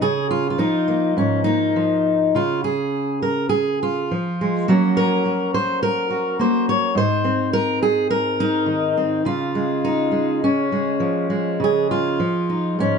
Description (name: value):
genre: folk, solo fingerstyle acoustic guitar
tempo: 104 BPM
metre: 4/4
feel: rubato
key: Db major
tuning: A4 = 440 Hz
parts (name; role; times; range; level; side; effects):
- fingerpicked steel-string acoustic guitar; solo; 0.0-13.0 s; Ab2 to Db5; -18 LUFS; equal; none
room: light reverb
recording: nothing above 10.4 kHz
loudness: -18 LUFS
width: side -6 dB against mid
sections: 0.0-2.4 A section; 2.4-11.6 B section; 11.6-13.0 A section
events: none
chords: 0.0 Db6; 2.4 Db; 4.7 Gb; 7.0 Ab; 9.2 Db; 11.6 Dbadd9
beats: | 0.01 0.59 1.17 1.76 | 2.36 2.94 3.52 4.11 | 4.69 5.26 5.82 6.39 | 6.96 7.53 8.09 8.66 | 9.24 9.82 10.40 11.01 | 11.61 12.20 12.78